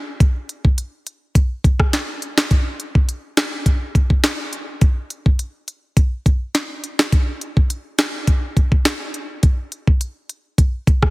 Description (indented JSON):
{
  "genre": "dancehall",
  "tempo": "104 BPM",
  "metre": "4/4",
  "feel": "straight",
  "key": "none",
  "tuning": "none",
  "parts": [
    { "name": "afro-pop drum kit", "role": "drums", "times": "0.2-11.1 s", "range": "hi-hat, kick drum, rim click, snare drum", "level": "-16 LUFS", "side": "equal", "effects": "none" }
  ],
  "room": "light reverb",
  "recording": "heavily compressed radio sound",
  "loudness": "-17 LUFS",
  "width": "side -22 dB against mid",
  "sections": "0.0-11.1 A section",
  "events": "none",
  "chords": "none"
}